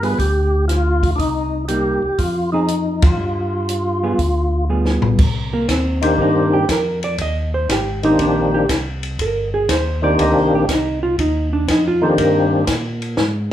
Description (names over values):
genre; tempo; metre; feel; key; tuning
soul jazz organ trio; 120 BPM; 4/4; swing 68% on 8ths; C minor; A4 = 440 Hz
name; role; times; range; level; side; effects
percussive tonewheel organ; melody; 0.0-12.7 s; Eb3 to B4; -18 LUFS; left 1 dB; slow rotary speaker, overdrive, chorus vibrato
hollow-body jazz guitar; accompaniment; 0.0-12.4 s; F3 to Eb5; -20 LUFS; right 2 dB; none
tonewheel organ; bass; 0.0-13.5 s; G1 to Bb2; -22 LUFS; equal; stopped rotary speaker
compact cocktail drum kit; drums; 0.0-13.3 s; crash cymbal, hi-hat, kick drum, ride cymbal, snare drum, toms; -20 LUFS; equal; none
room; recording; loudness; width
moderate large studio reverb, RT60 0.8 s; band playing live in one room; -15 LUFS; side -11 dB against mid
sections
0.0-5.2 A section; 5.2-13.5 B section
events
band accent 2.9; drum fill 4.7-5.2; hollow-body jazz guitar solo 5.2-13.5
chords
0.0 G7; 1.2 Cm7; 2.2 Fm7; 3.2 G7b9; 5.2 Cm7